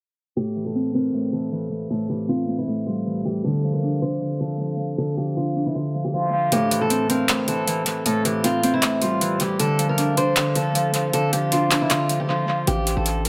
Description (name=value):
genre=hip hop, trap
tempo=156 BPM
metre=4/4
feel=half-time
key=A phrygian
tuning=A4 = 437 Hz
part: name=picked acoustic archtop guitar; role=melody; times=0.4-13.3 s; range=E4 to C5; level=-28 LUFS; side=equal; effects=low-pass filter, dub echo
part: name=Celtic harp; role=accompaniment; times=0.4-13.3 s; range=A2 to D4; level=-24 LUFS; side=equal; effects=low-pass filter, dub echo
part: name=trap drum kit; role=drums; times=6.5-13.3 s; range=handclaps, hi-hat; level=-27 LUFS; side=equal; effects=dub echo
part: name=hard-hitting 808-style bass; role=bass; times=12.7-13.3 s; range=A1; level=-26 LUFS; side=equal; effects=none
room=light reverb, small room ambience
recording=echo-heavy mix, low-pass filter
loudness=-22 LUFS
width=mono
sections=0.4-6.5 A section; 6.5-13.3 B section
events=filter sweep 0.4-6.5; kick muted 6.5-12.7; break 12.3-12.7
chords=0.4 Am7; 3.4 Dm7; 6.5 Am7; 9.6 Dm7; 12.7 Gsus2/A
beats=| 0.37 0.75 1.14 1.52 | 1.90 2.29 2.67 3.06 | 3.44 3.83 4.21 4.60 | 4.98 5.37 5.75 6.13 | 6.52 6.90 7.29 7.67 | 8.06 8.44 8.83 9.21 | 9.60 9.98 10.37 10.75 | 11.13 11.52 11.90 12.29 | 12.67 13.06